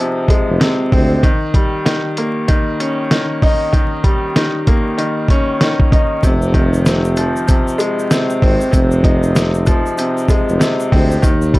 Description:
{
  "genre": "hip hop, boom-bap hip-hop",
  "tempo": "96 BPM",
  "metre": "4/4",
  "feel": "swing 62% on 16ths",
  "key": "F minor",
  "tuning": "A4 = 437 Hz",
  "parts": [
    { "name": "bright upright piano", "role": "accompaniment", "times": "0.0-11.6 s", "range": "C3 to Eb4", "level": "-16 LUFS", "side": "equal", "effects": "high-pass filter, low-pass filter" },
    { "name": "dusty soul sampler-style drum kit", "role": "drums", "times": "0.3-11.6 s", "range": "hi-hat, kick drum, snare drum", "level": "-14 LUFS", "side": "equal", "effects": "none" },
    { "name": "warm tuba", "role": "bass", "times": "0.5-1.2, 6.2-11.6 s", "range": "F1 to Eb2", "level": "-17 LUFS", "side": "equal", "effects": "none" },
    { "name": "egg shaker", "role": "percussion", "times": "6.2-11.5 s", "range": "none", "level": "-36 LUFS", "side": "left 2 dB", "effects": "none" }
  ],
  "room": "light reverb",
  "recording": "dry, gritty hardware recording, transformer saturation, vinyl crackle",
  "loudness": "-12 LUFS",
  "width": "side -20 dB against mid",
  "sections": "0.0-11.6 A section",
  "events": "none",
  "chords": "0.0 Fm7; 1.2 Eb7; 6.2 Fm7"
}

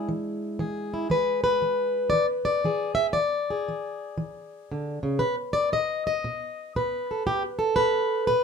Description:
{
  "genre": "acoustic country blues, solo or duo",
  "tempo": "117 BPM",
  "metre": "4/4",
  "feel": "swing 65% on 8ths",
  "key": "E mixolydian",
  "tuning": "A4 = 439 Hz",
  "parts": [
    { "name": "fingerpicked plugged-in swing-style acoustic guitar", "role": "solo", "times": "0.0-8.4 s", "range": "B2 to E5", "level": "-24 LUFS", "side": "left 1 dB", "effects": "none" }
  ],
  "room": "moderate small room reverb, RT60 0.5 s",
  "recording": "minimal, uncompressed stereo recording",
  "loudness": "-24 LUFS",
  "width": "side -6 dB against mid",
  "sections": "0.0-8.4 A section",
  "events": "none",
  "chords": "0.0 E7; 5.2 B7"
}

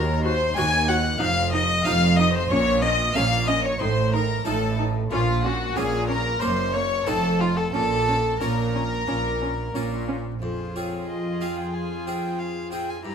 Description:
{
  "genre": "classical, baroque-style concerto movement with solo episodes",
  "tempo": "92 BPM",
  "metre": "4/4",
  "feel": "straight",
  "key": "Bb minor",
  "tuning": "A4 = 440 Hz",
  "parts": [
    { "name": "rich chamber violin section", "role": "melody", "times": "0.0-13.1 s", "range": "C5 to Ab6", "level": "-31 LUFS", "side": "left 2 dB", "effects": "none" },
    { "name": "warm violin", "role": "melody", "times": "0.0-13.1 s", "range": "F4 to Bb5", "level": "-28 LUFS", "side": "left 2 dB", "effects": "none" },
    { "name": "warm chamber violin section", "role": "second line", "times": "0.0-13.1 s", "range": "F4 to Ab5", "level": "-28 LUFS", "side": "left 2 dB", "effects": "none" },
    { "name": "harpsichord", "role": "accompaniment", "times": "0.0-13.1 s", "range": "Eb2 to Bb4", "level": "-32 LUFS", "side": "left 1 dB", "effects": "none" },
    { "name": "rich chamber cello section", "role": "bass", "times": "0.0-13.1 s", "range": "Eb2 to Bb2", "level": "-27 LUFS", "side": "right 2 dB", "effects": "none" },
    { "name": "warm chamber double bass section", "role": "bass", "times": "0.0-10.3 s", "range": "F1 to Eb2", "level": "-28 LUFS", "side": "right 4 dB", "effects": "none" },
    { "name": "dark chamber viola section", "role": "accompaniment", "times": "0.2-13.1 s", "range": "Bb3 to Gb4", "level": "-31 LUFS", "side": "equal", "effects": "none" }
  ],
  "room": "moderate recital hall reverb, RT60 1.4 s",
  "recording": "close, detailed microphones",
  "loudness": "-21 LUFS",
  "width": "side -7 dB against mid",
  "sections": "0.0-10.4 A section; 10.4-13.1 B section",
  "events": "none",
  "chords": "0.0 Ebm; 1.2 Cmadd11/F; 2.5 Bbm; 3.8 F7/A; 5.1 Bbm; 6.4 Gb; 7.1 F7; 7.7 Bbm; 10.4 Fm"
}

